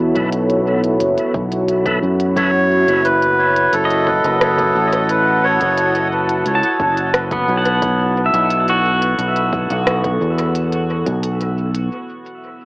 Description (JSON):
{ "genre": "ambient dub", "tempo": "88 BPM", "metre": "4/4", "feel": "straight", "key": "F# dorian", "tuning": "A4 = 439 Hz", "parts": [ { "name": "deep dark ambient pad", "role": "sustained chords", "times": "0.0-11.9 s", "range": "B3 to A5", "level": "-20 LUFS", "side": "equal", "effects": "chorus, built-in reverb" }, { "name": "fingered electric bass", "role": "bass", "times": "0.0-11.9 s", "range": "F#1 to F#2", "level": "-21 LUFS", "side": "equal", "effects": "none" }, { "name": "electronic kick drum", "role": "drums", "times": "0.2-11.2 s", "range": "none", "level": "-27 LUFS", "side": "equal", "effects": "none" }, { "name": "organic electronic drum kit", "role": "drums", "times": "0.2-11.9 s", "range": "hi-hat, rim click", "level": "-23 LUFS", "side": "equal", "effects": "overdrive, dub echo" }, { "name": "percussive tonewheel organ", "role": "stabs", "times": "1.9-2.0 s", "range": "E4 to B4", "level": "-27 LUFS", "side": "equal", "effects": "overdrive, fast rotary speaker, dub echo" }, { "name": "melodica", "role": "melody", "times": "2.4-6.1 s", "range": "A4 to C#5", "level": "-17 LUFS", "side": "equal", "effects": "tape echo" }, { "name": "pedal steel guitar", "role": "arpeggios", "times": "3.9-11.1 s", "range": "B3 to A5", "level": "-20 LUFS", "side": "equal", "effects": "tape echo" } ], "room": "moderate spring reverb, RT60 2.0 s", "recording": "echo-heavy mix, AM radio sound", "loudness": "-14 LUFS", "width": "side -24 dB against mid", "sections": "0.0-12.7 A section", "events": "break 11.9-12.7", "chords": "0.0 F#m7; 7.8 B7sus4" }